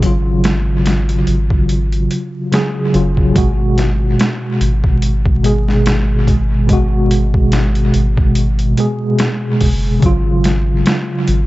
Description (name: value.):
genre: trip hop.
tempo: 72 BPM.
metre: 4/4.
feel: swing 56% on 16ths.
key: G# dorian.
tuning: A4 = 440 Hz.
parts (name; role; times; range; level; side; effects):
mellow tine electric piano; accompaniment; 0.0-11.5 s; B2 to G#4; -15 LUFS; equal; medium stereo tremolo, tape echo.
soft dub sub bass; bass; 0.0-11.5 s; F#1 to G#1; -16 LUFS; equal; none.
boom bap sampler-style drum kit; drums; 0.0-11.5 s; hi-hat, kick drum, snare drum; -17 LUFS; equal; overdrive, vintage 12-bit sampler grit, dub echo.
room: little or no reverb.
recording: echo-heavy mix, vinyl crackle, nothing above 7.8 kHz.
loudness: -12 LUFS.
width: side -18 dB against mid.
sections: 0.0-3.4 A section; 3.4-11.5 B section.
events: none.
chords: 0.0 C#add11; 3.4 G#m7; 10.0 C#add11.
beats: | 0.02 0.86 1.69 2.52 | 3.36 4.19 5.02 5.86 | 6.69 7.52 8.36 9.19 | 10.02 10.86.